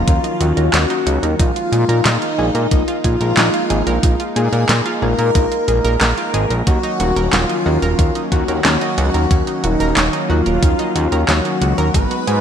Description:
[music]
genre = synthwave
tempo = 91 BPM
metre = 4/4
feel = straight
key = Eb minor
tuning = A4 = 440 Hz
[part]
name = soft octave-layered synth lead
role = melody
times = 0.0-12.4 s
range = Eb4 to Cb5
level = -21 LUFS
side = left 1 dB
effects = chorus, ping-pong delay
[part]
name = string machine, violins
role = second line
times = 0.0-12.4 s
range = Eb4 to Cb5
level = -27 LUFS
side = equal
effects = ensemble chorus, digital delay
[part]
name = warm analog pad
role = sustained chords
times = 0.0-12.4 s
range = Eb3 to Eb4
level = -25 LUFS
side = right 1 dB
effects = chorus, sidechain pumping
[part]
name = FM electric piano with soft pad layer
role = stabs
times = 0.0-12.4 s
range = Gb3 to Db5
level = -26 LUFS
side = left 4 dB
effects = chorus, phaser, digital delay
[part]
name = fat analog bass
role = bass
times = 0.0-12.4 s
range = Eb1 to Bb2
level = -18 LUFS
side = equal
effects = sidechain pumping
[part]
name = analog pluck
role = arpeggios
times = 0.1-12.4 s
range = Db4 to Bb4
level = -26 LUFS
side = right 2 dB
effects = chorus, digital delay
[part]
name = electronic kick drum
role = drums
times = 0.1-12.1 s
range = none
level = -16 LUFS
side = equal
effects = none
[part]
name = pop drum kit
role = drums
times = 0.1-12.4 s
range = handclaps, hi-hat, snare drum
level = -20 LUFS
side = right 1 dB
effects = none
[sound]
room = moderate lush hall reverb, RT60 1.6 s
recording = bright 1980s-style digital production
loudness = -14 LUFS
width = side -8 dB against mid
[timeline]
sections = 0.0-12.4 A section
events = none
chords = 0.0 Ebm7; 1.4 Bb7sus4; 6.7 Ebm7

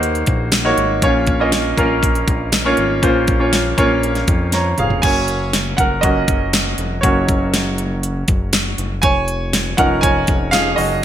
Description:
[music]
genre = piano-driven pop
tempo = 120 BPM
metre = 4/4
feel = straight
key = unclear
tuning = A4 = 440 Hz
[part]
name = bright concert grand piano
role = accompaniment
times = 0.0-11.0 s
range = Bb2 to Bb5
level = -17 LUFS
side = right 1 dB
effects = none
[part]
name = fat analog bass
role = bass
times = 0.0-11.0 s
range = F1 to F2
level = -22 LUFS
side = equal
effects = none
[part]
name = pop drum kit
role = drums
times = 0.0-10.9 s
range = crash cymbal, hi-hat, kick drum, snare drum, toms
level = -18 LUFS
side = equal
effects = gated reverb
[sound]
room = moderate plate reverb, RT60 1.4 s, digital ambience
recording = bright 1980s-style digital production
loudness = -14 LUFS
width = side -10 dB against mid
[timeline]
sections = 0.0-5.0 A section; 5.0-11.0 B section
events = drum fill 4.5-5.0; grand piano solo 5.0-11.0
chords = 0.0 Ebm7; 1.0 Bbm; 5.0 Gb

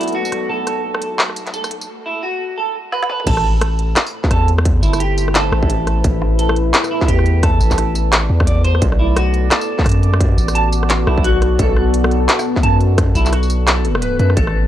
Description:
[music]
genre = half-time drum and bass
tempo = 173 BPM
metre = 4/4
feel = swing 60% on 16ths, half-time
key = unclear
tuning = A4 = 440 Hz
[part]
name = deep dark ambient pad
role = sustained chords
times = 0.0-14.7 s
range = A3 to D5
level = -23 LUFS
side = left 2 dB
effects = chorus, built-in reverb, sidechain pumping
[part]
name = clean electric guitar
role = arpeggios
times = 0.0-14.7 s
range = E4 to A5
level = -22 LUFS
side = right 2 dB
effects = lush chorus, analog delay
[part]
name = long sustained 808-style bass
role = bass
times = 0.0-14.7 s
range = G1 to F#2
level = -16 LUFS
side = equal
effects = none
[part]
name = organic electronic drum kit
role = drums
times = 0.0-14.5 s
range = crash cymbal, handclaps, hi-hat, rim click, snare drum, tambourine, toms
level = -19 LUFS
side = equal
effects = high-pass filter on snare, studio reverb, high-pass filter on hats, high-pass filter on perc, high-pass filter on toms, high-pass filter on cymbals
[part]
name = flickering grainy texture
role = texture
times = 0.0-1.9 s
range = A3 to A4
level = -36 LUFS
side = right 1 dB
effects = built-in reverb
[part]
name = electronic kick drum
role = drums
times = 3.3-14.4 s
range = none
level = -17 LUFS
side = equal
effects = distortion, studio reverb
[sound]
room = little or no reverb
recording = dry, gritty hardware recording, cassette tape, high-pass filter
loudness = -13 LUFS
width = side -12 dB against mid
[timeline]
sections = 0.0-3.3 A section; 3.3-14.7 B section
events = build-up 0.0-3.3; drum fill 2.9-3.3; drop 3.3-14.7; kick drops out 13.7-14.4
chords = 0.0 Bm7; 3.3 Amadd9; 8.8 Bm7

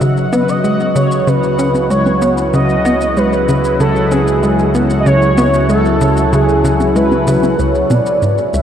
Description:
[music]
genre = ambient, sequencer-driven space music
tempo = 95 BPM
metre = 4/4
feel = straight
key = unclear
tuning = A4 = 440 Hz
[part]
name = sweeping resonant pad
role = sustained chords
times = 0.0-8.6 s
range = C#3 to B4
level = -17 LUFS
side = left 1 dB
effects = chorus
[part]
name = tight sequencer bass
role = riff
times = 0.0-8.6 s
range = C#2 to C#4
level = -16 LUFS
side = equal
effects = ping-pong delay
[part]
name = analog drone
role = bass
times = 0.0-8.6 s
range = C#2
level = -20 LUFS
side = equal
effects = chorus, tube saturation
[part]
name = shaker and bongos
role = percussion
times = 0.0-8.6 s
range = none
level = -25 LUFS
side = right 1 dB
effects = ping-pong delay
[part]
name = bubbling stepped-filter texture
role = texture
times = 0.0-7.6 s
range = F#4 to F#5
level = -28 LUFS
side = equal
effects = chorus, built-in reverb
[part]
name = expressive synth lead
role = melody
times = 0.3-8.6 s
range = G#4 to E5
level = -15 LUFS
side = equal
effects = analog chorus, ping-pong delay
[sound]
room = wet huge ambient reverb, RT60 8.2 s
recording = worn, warbling old tape, cassette tape, warbly pitch drift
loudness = -10 LUFS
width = side -9 dB against mid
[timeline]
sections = 0.0-7.6 A section; 7.6-8.6 B section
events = none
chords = 0.0 C#m7

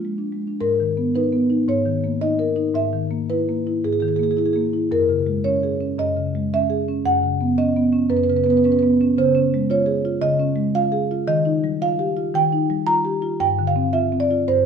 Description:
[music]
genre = classical, contemporary piece for solo marimba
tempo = 112 BPM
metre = 4/4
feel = rubato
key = unclear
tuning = A4 = 440 Hz
[part]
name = marimba with soft mallets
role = solo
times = 0.0-14.7 s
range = F#2 to Bb5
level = -18 LUFS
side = equal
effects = none
[sound]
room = wet stone room reverb, RT60 1.0 s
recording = dark, warm production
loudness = -18 LUFS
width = side -6 dB against mid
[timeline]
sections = 0.6-14.7 A section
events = none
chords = 0.0 Fm6 (rootless); 0.6 G#madd9; 1.7 D#5/G#; 2.8 Emaj7#11/G#; 4.9 F#add9; 7.1 Badd9/F#; 9.2 Dbmaj7; 11.3 Ebadd9; 13.4 G7sus4

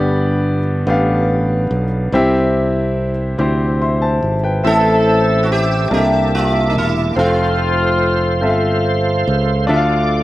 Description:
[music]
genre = slow gospel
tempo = 48 BPM (dotted quarters)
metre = 6/8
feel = straight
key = C major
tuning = A4 = 440 Hz
[part]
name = clear baby grand piano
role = accompaniment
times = 0.0-10.2 s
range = G2 to C6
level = -18 LUFS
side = left 1 dB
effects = none
[part]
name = modern bright fingered electric bass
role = bass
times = 0.0-10.2 s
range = E1 to D2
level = -18 LUFS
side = right 1 dB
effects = none
[part]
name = bright tonewheel organ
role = sustained chords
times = 4.6-10.2 s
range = Bb3 to E6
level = -20 LUFS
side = right 2 dB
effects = fast rotary speaker, chorus vibrato
[part]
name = sitar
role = melody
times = 4.7-8.8 s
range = Eb4 to A4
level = -22 LUFS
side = right 2 dB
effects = none
[part]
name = warm horn section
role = melody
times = 4.7-8.9 s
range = A3 to E5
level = -19 LUFS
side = left 2 dB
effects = slapback echo
[sound]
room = little or no reverb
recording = recorded outdoors, with no room sound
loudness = -13 LUFS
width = side -16 dB against mid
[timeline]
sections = 0.0-10.2 A section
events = none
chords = 0.0 G; 2.1 C; 4.6 Am; 5.9 C13; 7.2 F; 9.7 Dm

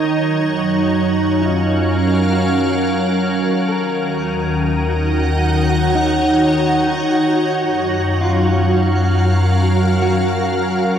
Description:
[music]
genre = ambient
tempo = 66 BPM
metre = 4/4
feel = straight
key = unclear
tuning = A4 = 439 Hz
[part]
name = soft additive organ-like pad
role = sustained chords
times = 0.0-11.0 s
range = Eb3 to Gb5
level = -16 LUFS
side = right 1 dB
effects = ensemble chorus, built-in reverb
[part]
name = mellow electric guitar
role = arpeggios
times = 0.0-11.0 s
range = Eb4 to Bb4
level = -26 LUFS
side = left 2 dB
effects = diffuse ambient delay
[part]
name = deep rumbling drone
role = bass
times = 0.1-11.0 s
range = Eb2 to Gb2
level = -20 LUFS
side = left 1 dB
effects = built-in reverb
[part]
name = twinkling granular texture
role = texture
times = 4.2-11.0 s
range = Gb4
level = -23 LUFS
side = right 1 dB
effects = built-in reverb
[sound]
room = wet cathedral reverb, RT60 6.4 s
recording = in a vast, echoing space, cassette tape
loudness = -14 LUFS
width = side -9 dB against mid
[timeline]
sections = 0.0-10.9 A section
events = fade-in on clean electric guitar 0.0-10.9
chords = 0.0 Gbmaj7; 3.7 Ebm7; 7.3 Gbmaj7

